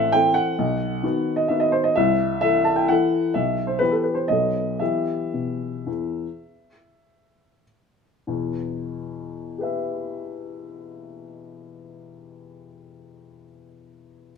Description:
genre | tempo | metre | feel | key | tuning
classical, piano waltz | 89-138 BPM | 3/4 | rubato | E minor | A4 = 444 Hz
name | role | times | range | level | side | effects
warm upright piano | solo | 0.0-14.3 s | A1 to A5 | -21 LUFS | left 1 dB | none
room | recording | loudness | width
wet stone room reverb, RT60 1.3 s | minimal, uncompressed stereo recording | -20 LUFS | side -6 dB against mid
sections
0.0-8.3 A section; 8.3-12.2 B section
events
slowing down 4.0-8.3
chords
0.0 Am; 0.6 B; 2.0 Am/C; 3.4 Em/B; 4.3 B7; 4.8 Em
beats
0.14 | 0.59 1.03 1.50 | 1.96 2.42 2.89 | 3.35 3.80 4.29 | 4.80 5.33 5.88 | 6.42 6.99 7.62 | 8.28 8.93 9.59 | 10.23 10.88 11.53

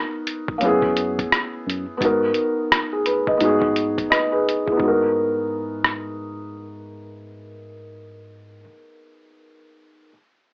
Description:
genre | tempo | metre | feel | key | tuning
lo-fi hip hop | 86 BPM | 4/4 | swing 62% on 16ths | G# minor | A4 = 440 Hz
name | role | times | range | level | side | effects
felt-muted upright piano | accompaniment | 0.0-10.1 s | A#3 to D#5 | -20 LUFS | equal | low-pass filter
lo-fi sampler-style drum kit | drums | 0.3-6.0 s | hi-hat, kick drum, rim click | -21 LUFS | equal | none
tine electric piano | bass | 0.6-8.6 s | F#2 to G#2 | -30 LUFS | equal | medium stereo tremolo
room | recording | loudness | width
wet studio reverb, RT60 0.5 s | cassette tape, AM radio sound | -18 LUFS | side -31 dB against mid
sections
0.0-4.8 A section; 4.8-7.6 B section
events
filter sweep on felt piano 0.0-4.8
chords
0.0 G#m9 (rootless); 0.6 F#7sus4; 2.0 G#m9; 3.4 G#m7; 4.8 G#m9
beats
0.61 1.31 | 2.01 2.70 3.40 4.10 | 4.80 5.49 6.19 6.89

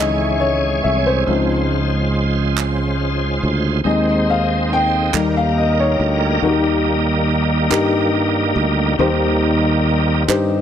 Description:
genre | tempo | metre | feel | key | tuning
slow gospel | 47 BPM (dotted quarters) | 6/8 | straight | unclear | A4 = 440 Hz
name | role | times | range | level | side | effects
dark upright piano | accompaniment | 0.0-10.6 s | Eb3 to Ab5 | -19 LUFS | left 4 dB | none
bright tonewheel organ | sustained chords | 0.0-10.2 s | Db3 to Db5 | -20 LUFS | right 3 dB | slow rotary speaker, chorus vibrato
fingered electric bass | bass | 0.0-10.6 s | C2 to G2 | -19 LUFS | right 1 dB | none
group handclap | percussion | 0.0-10.6 s | none | -23 LUFS | right 10 dB | none
room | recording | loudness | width
light reverb | none | -15 LUFS | side -9 dB against mid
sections
0.0-6.4 A section; 6.4-10.6 B section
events
upright piano solo 0.0-6.4; tonewheel organ solo 6.4-10.6; upright piano fill 10.3-10.6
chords
0.0 Dbmadd9; 1.3 Dbmaj7; 3.9 Ab/Eb; 5.1 Eb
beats
| 1.28 2.57 | 3.85 5.14 | 6.43 7.71 | 9.00 10.29

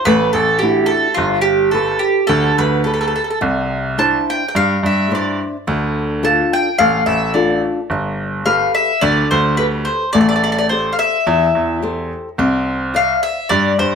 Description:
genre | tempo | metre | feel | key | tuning
italian folk, Italian serenade | 107 BPM | 4/4 | straight | C major | A4 = 440 Hz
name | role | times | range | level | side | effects
mandolin | melody | 0.0-13.9 s | F4 to A5 | -16 LUFS | equal | none
nylon-string guitar | accompaniment | 0.1-13.9 s | C3 to E5 | -19 LUFS | left 3 dB | none
bright baby grand piano | bass | 0.1-13.9 s | G1 to G2 | -20 LUFS | right 2 dB | none
room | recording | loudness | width
light reverb | close, detailed microphones | -14 LUFS | side -6 dB against mid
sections
0.0-13.9 A section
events
none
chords
0.0 Dadd9; 1.2 Gadd9; 3.4 Cadd9; 5.7 Dm; 7.9 Gadd9; 10.1 Am7; 12.4 Cadd9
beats
0.06 0.62 | 1.18 1.74 2.30 2.86 | 3.43 3.99 4.55 5.11 | 5.67 6.23 6.79 7.34 | 7.90 8.46 9.02 9.58 | 10.14 10.70 11.27 11.83 | 12.39 12.95 13.51

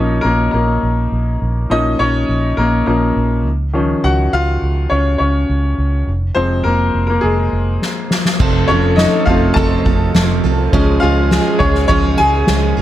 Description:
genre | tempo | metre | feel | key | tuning
piano-driven pop | 103 BPM | 4/4 | straight | unclear | A4 = 443 Hz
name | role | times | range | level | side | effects
bright baby grand piano | accompaniment | 0.0-12.8 s | Eb3 to A5 | -16 LUFS | left 2 dB | none
vintage muted fingered electric bass | bass | 0.0-12.8 s | F1 to Db2 | -17 LUFS | equal | none
soft-mallet drum kit | drums | 7.8-12.8 s | crash cymbal, kick drum, ride cymbal, snare drum | -17 LUFS | equal | none
warm French horn section | second line | 8.4-12.7 s | Ab3 to A4 | -23 LUFS | left 4 dB | none
picked steel-string acoustic guitar | riff | 8.4-12.8 s | F2 to A4 | -19 LUFS | right 7 dB | none
room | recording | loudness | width
light reverb | none | -12 LUFS | side -13 dB against mid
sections
0.0-8.4 A section; 8.4-12.8 B section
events
grand piano solo 0.0-8.4, 8.4-12.8; drum fill 7.8-8.4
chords
0.0 Bbm; 3.5 Dbadd9; 6.1 Fm; 8.4 F; 10.7 Db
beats
0.24 0.83 | 1.41 1.99 2.58 3.16 | 3.74 4.33 4.91 5.49 | 6.07 6.66 7.24 7.82 | 8.40 8.99 9.57 10.15 | 10.73 11.31 11.90 12.48

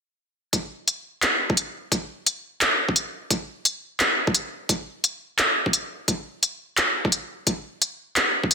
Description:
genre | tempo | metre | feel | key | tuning
half-time drum and bass | 173 BPM | 4/4 | swing 59% on 16ths, half-time | none | none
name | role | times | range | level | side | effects
electronic kick drum | drums | 0.5-8.5 s | none | -25 LUFS | equal | overdrive, high-pass filter on kick, studio reverb, high-pass filter on room
organic electronic drum kit | drums | 0.5-8.5 s | handclaps, hi-hat | -20 LUFS | equal | studio reverb
room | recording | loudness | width
wet digital room reverb, RT60 1.2 s, digital ambience | dense, heavily limited modern master | -22 LUFS | side -6 dB against mid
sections
0.5-8.5 A section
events
none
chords
none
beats
| 0.53 0.88 1.23 1.57 | 1.92 2.27 2.61 2.96 | 3.31 3.65 4.00 4.35 | 4.69 5.04 5.39 5.73 | 6.08 6.43 6.77 7.12 | 7.47 7.81 8.16 8.51

